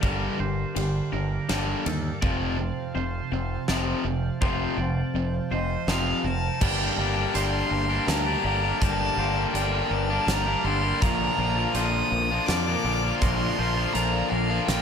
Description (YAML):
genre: post-rock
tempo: 82 BPM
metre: 3/4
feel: straight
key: G minor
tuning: A4 = 439 Hz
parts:
  - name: hand-pumped harmonium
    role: sustained chords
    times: 0.0-14.8 s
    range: Bb3 to A5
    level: -39 LUFS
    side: right 4 dB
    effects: none
  - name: semi-hollow electric guitar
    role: arpeggios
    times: 0.0-14.8 s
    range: F2 to D4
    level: -36 LUFS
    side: left 1 dB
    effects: lush chorus, plate reverb, digital delay
  - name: twangy electric guitar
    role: arpeggios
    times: 0.0-14.8 s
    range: A4 to D5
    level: -37 LUFS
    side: right 4 dB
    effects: plate reverb, digital delay
  - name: crunchy overdriven guitar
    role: riff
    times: 0.0-14.8 s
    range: F2 to G4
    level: -29 LUFS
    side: left 13 dB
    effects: none
  - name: tight distorted guitar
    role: riff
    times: 0.0-14.8 s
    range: F2 to D4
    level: -31 LUFS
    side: right 10 dB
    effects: distortion
  - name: growling fingered electric bass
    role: bass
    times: 0.0-14.8 s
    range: F1 to F2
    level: -29 LUFS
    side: equal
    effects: overdrive
  - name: huge arena drum kit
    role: drums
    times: 0.0-14.8 s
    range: crash cymbal, hi-hat, kick drum, ride cymbal, snare drum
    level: -30 LUFS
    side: right 1 dB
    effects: none
  - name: rich violin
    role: melody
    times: 5.5-14.8 s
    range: Eb5 to Eb6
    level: -29 LUFS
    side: equal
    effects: plate reverb, digital delay
room: light reverb, small room ambience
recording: none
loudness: -23 LUFS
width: side -7 dB against mid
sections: 0.0-6.6 A section; 6.6-14.8 B section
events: build-up 0.0-6.6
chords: 0.0 Gm; 2.2 F; 6.6 Gm; 11.0 Bb